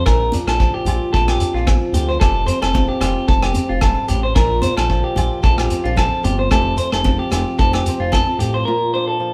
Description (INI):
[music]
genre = highlife guitar band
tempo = 112 BPM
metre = 4/4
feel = swing 54% on 16ths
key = F major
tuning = A4 = 440 Hz
[part]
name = flamenco guitar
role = accompaniment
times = 0.0-9.3 s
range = F2 to G4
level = -26 LUFS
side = equal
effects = none
[part]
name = clean electric guitar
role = arpeggios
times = 0.0-9.3 s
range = F4 to C5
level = -23 LUFS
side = equal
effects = none
[part]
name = smooth gliding synth bass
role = bass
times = 0.0-8.6 s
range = F1 to D2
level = -24 LUFS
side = equal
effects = none
[part]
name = vintage drum kit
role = drums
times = 0.1-8.5 s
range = hi-hat, kick drum, rim click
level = -21 LUFS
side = equal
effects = none
[part]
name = agogo bells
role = percussion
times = 0.1-8.3 s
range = none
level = -33 LUFS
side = equal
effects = none
[part]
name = congas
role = percussion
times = 0.1-8.5 s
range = none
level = -31 LUFS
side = equal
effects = none
[part]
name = shekere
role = percussion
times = 0.1-8.5 s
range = none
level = -28 LUFS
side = equal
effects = none
[sound]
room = light reverb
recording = band playing live in one room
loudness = -17 LUFS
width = mono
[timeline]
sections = 0.0-9.3 A section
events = none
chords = 0.1 Bb; 2.2 Fadd9; 4.4 Bb; 6.5 Fadd9; 8.7 Bb